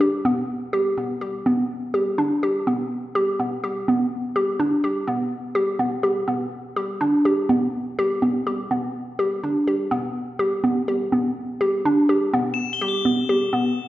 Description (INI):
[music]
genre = contemporary instrumental, chamber music in an uneven meter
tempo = 124 BPM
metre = 5/4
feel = straight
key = E minor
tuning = A4 = 440 Hz
[part]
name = hollow square pluck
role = arpeggios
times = 0.0-13.8 s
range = B3 to G4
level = -20 LUFS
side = equal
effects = chorus
[part]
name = crotales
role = texture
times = 12.5-13.9 s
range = E7 to A7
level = -26 LUFS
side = left 7 dB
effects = none
[sound]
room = wet recital hall reverb, RT60 1.8 s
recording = none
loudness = -20 LUFS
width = side -15 dB against mid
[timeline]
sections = 0.0-12.3 A section; 12.3-13.9 B section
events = none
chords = 0.0 N.C.; 12.3 Em